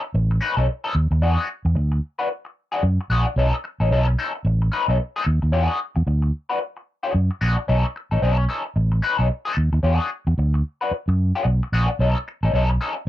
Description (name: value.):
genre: funk.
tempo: 111 BPM.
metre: 4/4.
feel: swing 60% on 16ths.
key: B mixolydian.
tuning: A4 = 440 Hz.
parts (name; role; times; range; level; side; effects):
electric guitar at the edge of break-up; accompaniment; 0.0-13.0 s; C#4 to B4; -24 LUFS; left 3 dB; wah.
fingered electric bass; bass; 0.1-13.1 s; A1 to F#2; -19 LUFS; equal; none.
room: little or no reverb.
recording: dry, close 1970s-style studio recording.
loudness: -19 LUFS.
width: side -14 dB against mid.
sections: 0.0-13.1 A section.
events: none.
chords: 0.0 B9; 1.2 E9 (rootless); 3.4 B9; 5.5 E9 (rootless); 7.7 B9; 9.8 E9 (rootless); 12.0 B9.